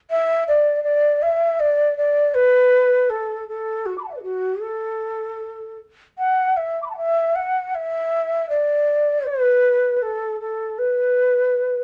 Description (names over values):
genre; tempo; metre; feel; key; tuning
chinese traditional; 79 BPM; 4/4; rubato; D gong mode; A4 = 440 Hz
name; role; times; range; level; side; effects
breathy xiao; solo; 0.1-11.8 s; F#4 to D6; -20 LUFS; equal; none
room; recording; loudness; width
moderate studio reverb, RT60 0.5 s; none; -20 LUFS; mono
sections
0.0-11.8 A section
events
none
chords
none